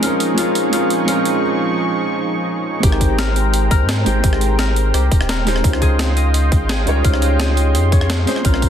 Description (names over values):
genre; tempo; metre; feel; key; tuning
liquid drum and bass; 171 BPM; 4/4; straight; Ab major; A4 = 441 Hz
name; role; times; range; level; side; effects
felt-muted upright piano; accompaniment; 0.0-8.7 s; G3 to Db5; -20 LUFS; right 1 dB; tape echo
warm analog pad; sustained chords; 0.0-8.7 s; F3 to Db6; -23 LUFS; right 1 dB; lush chorus, sidechain pumping
concert harp; arpeggios; 0.0-8.7 s; F4 to G5; -24 LUFS; left 5 dB; tape echo
breakbeat sampler-style drum kit; drums; 0.0-8.7 s; hi-hat, rim click, snare drum; -23 LUFS; right 1 dB; high-pass filter on hats, high-pass filter on snare
warm sub bass; bass; 2.8-8.7 s; Eb1 to Ab2; -17 LUFS; equal; none
electronic kick drum; drums; 2.8-8.7 s; none; -15 LUFS; equal; none
room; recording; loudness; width
light reverb, digital ambience; dense, heavily limited modern master; -14 LUFS; side -9 dB against mid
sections
0.0-2.8 A section; 2.8-8.7 B section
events
build-up 0.0-2.8; filter sweep on harp 0.0-2.8; break 1.4-2.8; drop 2.8-8.7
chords
0.0 Eb9sus4; 2.8 Abmaj9; 5.6 Dbmaj9#11